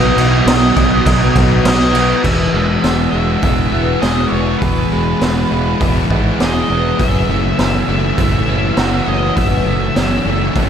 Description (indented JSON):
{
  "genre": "rock, shoegaze and dream pop",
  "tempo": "101 BPM",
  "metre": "4/4",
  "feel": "straight",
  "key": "E major",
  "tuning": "A4 = 442 Hz",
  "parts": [
    { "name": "octave-fuzz lead guitar", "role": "melody", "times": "0.0-10.5 s", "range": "B4 to E5", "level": "-21 LUFS", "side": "right 2 dB", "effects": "distortion, diffuse ambient delay" },
    { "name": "fingerpicked twelve-string acoustic guitar", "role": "arpeggios", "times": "0.0-10.7 s", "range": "G#4 to C#5", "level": "-27 LUFS", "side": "left 7 dB", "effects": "wide subtle chorus, diffuse ambient delay" },
    { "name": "overdriven electric guitar", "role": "riff", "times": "0.0-2.2 s", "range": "B2 to D#4", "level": "-23 LUFS", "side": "equal", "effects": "none" },
    { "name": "overdriven semi-hollow guitar", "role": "riff", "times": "0.0-10.7 s", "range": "E2 to G#4", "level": "-19 LUFS", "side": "right 8 dB", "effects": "reverse reverb" },
    { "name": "thick fuzz guitar", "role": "riff", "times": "0.0-10.7 s", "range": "F#2 to E4", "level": "-19 LUFS", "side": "left 8 dB", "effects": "distortion, analog chorus" },
    { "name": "growling fingered electric bass", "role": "bass", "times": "0.0-10.7 s", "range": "E1 to B1", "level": "-18 LUFS", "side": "equal", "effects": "overdrive" },
    { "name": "raw garage drum kit", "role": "drums", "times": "0.2-10.7 s", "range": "crash cymbal, hi-hat, kick drum, snare drum", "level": "-18 LUFS", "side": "equal", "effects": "none" }
  ],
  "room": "moderate huge ambient reverb, RT60 6.2 s",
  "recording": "dreamy mix soaked in reverb",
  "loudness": "-12 LUFS",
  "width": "side -8 dB against mid",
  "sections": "0.0-2.2 A section; 2.2-10.7 B section",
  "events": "none",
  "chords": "0.0 B; 2.2 E; 7.0 F#m7",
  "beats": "0.47 1.06 1.65 | 2.24 2.84 3.43 4.02 | 4.62 5.21 5.81 6.40 | 7.00 7.59 8.18 8.78 | 9.37 9.97 10.56"
}